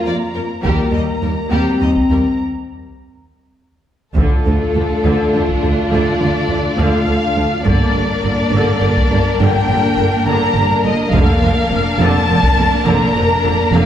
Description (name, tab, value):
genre	cinematic, epic orchestral film score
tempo	69 BPM (dotted quarters)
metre	6/8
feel	straight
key	D phrygian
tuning	A4 = 437 Hz
part	warm symphonic violin section	melody	0.0-13.9 s	A4 to Bb5	-20 LUFS	left 3 dB	none
part	rich symphonic violin section	second line	0.0-13.9 s	D4 to Eb5	-22 LUFS	left 2 dB	none
part	clear symphonic viola section	accompaniment	0.0-13.9 s	D3 to Bb3	-22 LUFS	right 2 dB	none
part	mellow French horn section	sustained chords	0.0-13.9 s	A3 to F4	-21 LUFS	left 2 dB	none
part	clear symphonic cello section	bass	0.1-13.8 s	D2 to G2	-20 LUFS	right 2 dB	none
part	rich symphonic double bass section	bass	0.6-0.9, 4.2-13.8 s	F1 to Eb2	-20 LUFS	right 2 dB	none
part	taiko ensemble	drums	0.6-12.7 s	none	-19 LUFS	equal	none
room	wet recital hall reverb, RT60 1.6 s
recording	heard from further back in the room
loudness	-13 LUFS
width	side -10 dB against mid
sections	0.0-4.2 A section; 4.2-13.9 A section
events	break 2.4-4.2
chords	0.0 Bb5/F; 0.6 Eb; 2.4 N.C.; 4.2 Dm; 7.7 Gm; 11.1 Bb/F